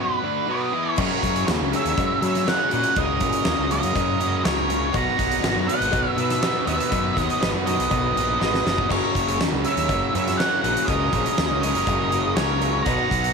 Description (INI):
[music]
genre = classic rock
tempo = 121 BPM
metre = 4/4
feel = straight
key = unclear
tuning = A4 = 441 Hz
[part]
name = octave-fuzz lead guitar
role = melody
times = 0.0-13.3 s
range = B4 to A#5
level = -24 LUFS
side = right 1 dB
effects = distortion, slapback echo
[part]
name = crunchy overdriven guitar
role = riff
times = 0.0-13.3 s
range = F#2 to E4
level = -28 LUFS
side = left 15 dB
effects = none
[part]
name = tight distorted guitar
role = riff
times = 0.0-13.3 s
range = F#2 to E4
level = -28 LUFS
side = right 15 dB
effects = distortion
[part]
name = clear fiddle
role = second line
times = 0.5-13.3 s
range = A#4 to F#5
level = -32 LUFS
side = right 14 dB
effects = none
[part]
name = picked steel-string acoustic guitar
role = accompaniment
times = 1.0-13.3 s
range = F#2 to F#4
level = -36 LUFS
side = left 14 dB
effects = none
[part]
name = bright tonewheel organ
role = sustained chords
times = 1.0-13.3 s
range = D#3 to F#5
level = -38 LUFS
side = equal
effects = none
[part]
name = fuzz fingered electric bass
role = bass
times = 1.0-13.3 s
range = F#1 to F#3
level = -27 LUFS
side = equal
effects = overdrive
[part]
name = huge arena drum kit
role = drums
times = 1.0-13.3 s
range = crash cymbal, hi-hat, kick drum, snare drum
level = -27 LUFS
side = right 1 dB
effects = none
[part]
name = cowbell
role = percussion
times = 1.0-13.0 s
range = none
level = -37 LUFS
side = left 15 dB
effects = none
[sound]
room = small room ambience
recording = 1960s-style stereo with parts hard left and right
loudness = -19 LUFS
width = side -5 dB against mid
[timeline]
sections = 1.0-13.3 A section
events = break 0.0-1.0; drum fill 8.4-8.9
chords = 0.0 B; 1.0 F#add9; 4.9 B; 8.9 F#add9